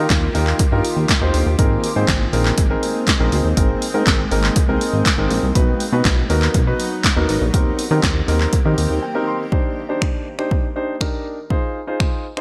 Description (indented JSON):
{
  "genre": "dance-pop",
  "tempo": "121 BPM",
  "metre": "4/4",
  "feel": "straight",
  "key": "Eb major",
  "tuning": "A4 = 440 Hz",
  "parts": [
    { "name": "warm concert grand piano", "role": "accompaniment", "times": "0.0-12.4 s", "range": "B3 to C6", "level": "-24 LUFS", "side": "equal", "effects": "sidechain pumping" },
    { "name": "granular cloud pad", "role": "sustained chords", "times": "0.0-9.5 s", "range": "Eb3 to G4", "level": "-30 LUFS", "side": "equal", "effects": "built-in reverb, subtle chorus, sidechain pumping" },
    { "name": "chorused synth bass", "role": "bass", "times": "0.0-9.0 s", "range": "Ab1 to Eb3", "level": "-22 LUFS", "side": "equal", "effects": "sidechain pumping" },
    { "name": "punchy analog drum machine", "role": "drums", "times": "0.1-12.4 s", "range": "finger snaps, handclaps, hi-hat, kick drum, snare drum", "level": "-21 LUFS", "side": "equal", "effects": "gated reverb" }
  ],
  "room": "light reverb",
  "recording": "bright 1980s-style digital production",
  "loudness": "-18 LUFS",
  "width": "mono",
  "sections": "0.0-9.5 A section; 9.5-12.4 B section",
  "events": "grand piano fill 8.8-9.5; break 9.0-9.5",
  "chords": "0.0 Ebadd9; 1.6 Abadd9; 5.6 B; 7.5 Eb6; 9.5 Cmadd9; 11.5 Fm7",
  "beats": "0.10 0.60 1.09 | 1.59 2.08 2.58 3.08 | 3.57 4.07 4.56 5.06 | 5.55 6.05 6.55 7.04 | 7.54 8.03 8.53 9.03 | 9.52 10.02 10.51 11.01 | 11.51 12.00"
}